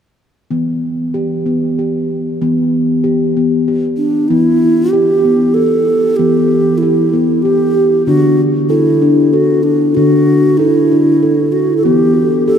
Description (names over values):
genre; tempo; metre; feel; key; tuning
world meditative, meditative tuned percussion; 95 BPM; 3/4; straight; E minor; A4 = 440 Hz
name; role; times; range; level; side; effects
steel tongue drum; arpeggios; 0.5-12.6 s; D3 to A4; -12 LUFS; left 1 dB; none
breathy round clay ocarina; melody; 4.0-12.6 s; D4 to A4; -13 LUFS; right 1 dB; tape echo
room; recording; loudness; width
wet huge ambient reverb, RT60 8.3 s; dreamy mix soaked in reverb; -10 LUFS; side -8 dB against mid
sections
0.5-4.3 A section; 4.3-12.6 B section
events
none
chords
0.5 Em; 8.1 D; 11.8 Em